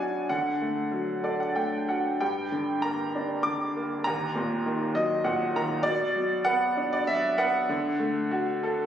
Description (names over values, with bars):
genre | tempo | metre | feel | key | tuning
classical, lyrical solo piano | 92-101 BPM | 3/4 | rubato | unclear | A4 = 439 Hz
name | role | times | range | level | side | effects
bright upright piano | solo | 0.0-8.9 s | Eb2 to D6 | -25 LUFS | equal | none
room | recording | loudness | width
moderate recital hall reverb, RT60 1.3 s | recorded on a phone in the room, club reverb, compression | -25 LUFS | side -9 dB against mid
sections
0.0-8.9 A section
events
upright piano fill 0.9-2.2, 4.7-5.9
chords
0.3 D; 2.2 Gm; 4.1 Ebm; 5.9 Bm; 7.7 D